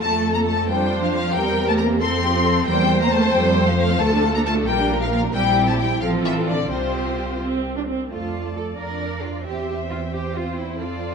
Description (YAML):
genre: quick classical-period movement for string orchestra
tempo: 89 BPM (dotted quarters)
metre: 6/8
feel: straight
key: unclear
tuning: A4 = 440 Hz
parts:
  - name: warm studio violin section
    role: melody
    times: 0.0-11.1 s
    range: C5 to C6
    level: -24 LUFS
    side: left 6 dB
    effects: none
  - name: warm studio violin section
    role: second line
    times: 0.0-11.1 s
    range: G4 to E5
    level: -26 LUFS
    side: left 1 dB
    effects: none
  - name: warm studio viola section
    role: accompaniment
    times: 0.0-11.1 s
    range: A3 to D5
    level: -25 LUFS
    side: right 2 dB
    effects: none
  - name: clear studio double bass section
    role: bass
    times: 0.0-11.1 s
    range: A1 to F2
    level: -25 LUFS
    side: right 2 dB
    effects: none
  - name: warm studio cello section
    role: bass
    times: 0.0-11.1 s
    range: C3 to Bb4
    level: -25 LUFS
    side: right 2 dB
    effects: none
room: moderate scoring stage reverb, RT60 2.0 s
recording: dark, warm production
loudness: -18 LUFS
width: side -6 dB against mid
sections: 0.0-8.1 A section; 8.1-11.1 B section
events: none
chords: 0.0 F; 1.4 C7/E; 2.0 F; 2.7 C7/E; 3.4 F; 4.0 Dm; 4.7 Gm7/Bb; 5.3 C7/Bb; 6.0 F/A; 6.7 Csus4; 7.4 C5; 8.1 F; 8.8 Bb/F; 9.5 C/E